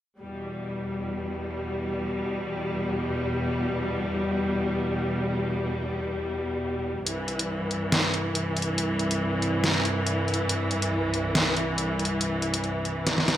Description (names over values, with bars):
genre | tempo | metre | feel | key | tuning
heavy wobble dubstep | 140 BPM | 4/4 | swing 53% on 16ths, half-time | E minor | A4 = 440 Hz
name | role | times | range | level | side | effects
clear symphonic string section | sustained chords | 0.2-13.4 s | C2 to G3 | -26 LUFS | equal | none
dubstep drum kit | drums | 7.1-13.4 s | hi-hat, snare drum | -26 LUFS | equal | none
room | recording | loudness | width
moderate lush hall reverb, RT60 2.2 s | none | -25 LUFS | side -12 dB against mid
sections
0.2-13.4 A section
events
drum fill 13.1-13.4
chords
0.2 Em; 7.1 C